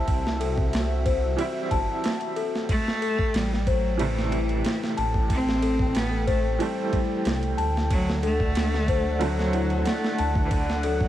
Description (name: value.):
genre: trip hop.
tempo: 92 BPM.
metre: 4/4.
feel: straight.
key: A dorian.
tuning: A4 = 440 Hz.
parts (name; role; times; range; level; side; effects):
clear upright piano; accompaniment; 0.0-11.1 s; C3 to E4; -32 LUFS; right 4 dB; tremolo, vintage 12-bit sampler grit, tape echo.
dark analog pad; sustained chords; 0.0-11.1 s; A3 to G5; -32 LUFS; right 1 dB; chorus.
celesta; arpeggios; 0.0-11.1 s; E4 to A5; -30 LUFS; left 6 dB; tape echo.
dark detuned saw bass; bass; 0.0-11.1 s; G1 to D2; -27 LUFS; equal; none.
dusty soul sampler-style drum kit; drums; 0.1-11.1 s; kick drum, ride cymbal, snare drum; -28 LUFS; right 1 dB; overdrive.
bright cello; melody; 2.7-11.1 s; D3 to C4; -29 LUFS; equal; tape echo.
room: small room ambience.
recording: none.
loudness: -22 LUFS.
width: side -12 dB against mid.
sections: 0.0-11.1 A section.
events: none.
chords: 0.0 C; 2.7 Am7; 7.9 D7.